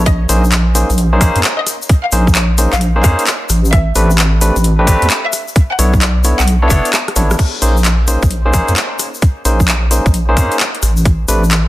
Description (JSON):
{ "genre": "UK garage, two-step garage", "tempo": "131 BPM", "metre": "4/4", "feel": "swing 65% on 16ths", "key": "unclear", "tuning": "A4 = 440 Hz", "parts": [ { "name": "barky tine electric piano", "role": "stabs", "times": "0.0-11.4 s", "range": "A3 to C#5", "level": "-18 LUFS", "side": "equal", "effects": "tape echo" }, { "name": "deep soft wobble bass", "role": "bass", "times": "0.0-11.7 s", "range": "F#1 to F2", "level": "-13 LUFS", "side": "equal", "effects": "chorus" }, { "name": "clear chamber violin section", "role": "melody", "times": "0.1-6.9 s", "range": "Db5 to F#5", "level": "-22 LUFS", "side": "left 1 dB", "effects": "tape echo" }, { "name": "electronic kick drum", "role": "drums", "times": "0.1-11.2 s", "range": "none", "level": "-11 LUFS", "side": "equal", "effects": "small room ambience" }, { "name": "garage drum kit", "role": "drums", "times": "0.1-11.6 s", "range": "crash cymbal, handclaps, hi-hat, rim click", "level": "-17 LUFS", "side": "left 1 dB", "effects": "small room ambience" }, { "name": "egg shaker", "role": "percussion", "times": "0.1-11.6 s", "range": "none", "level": "-24 LUFS", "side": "left 5 dB", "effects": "none" } ], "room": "light reverb", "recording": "dense, heavily limited modern master", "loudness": "-10 LUFS", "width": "side -16 dB against mid", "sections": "0.0-7.4 A section; 7.4-11.7 B section", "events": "drop 0.0-7.4; break 6.9-7.4; drum fill 6.9-7.4; band accent 7.3", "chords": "0.1 Bbm11; 3.7 Am11; 5.3 Bm11; 7.4 Bbm11; 11.1 Am11" }